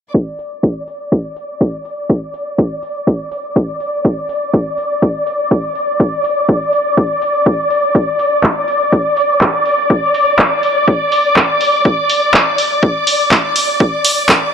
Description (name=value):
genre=piano house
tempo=123 BPM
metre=4/4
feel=swing 54% on 16ths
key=unclear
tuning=A4 = 439 Hz
part: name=warm symphonic violin section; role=sustained chords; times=0.1-14.5 s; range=D5 to D6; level=-15 LUFS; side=left 1 dB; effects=sidechain pumping
part: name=electronic kick drum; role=drums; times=0.1-14.4 s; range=none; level=-14 LUFS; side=equal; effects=high-pass filter on kick
part: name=punchy analog drum machine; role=drums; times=0.4-14.4 s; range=handclaps, hi-hat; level=-13 LUFS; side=right 1 dB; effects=none
room=moderate plate reverb, RT60 1.5 s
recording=low-pass filter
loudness=-12 LUFS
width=side -7 dB against mid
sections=0.1-14.5 A section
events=filter sweep 0.1-14.5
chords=none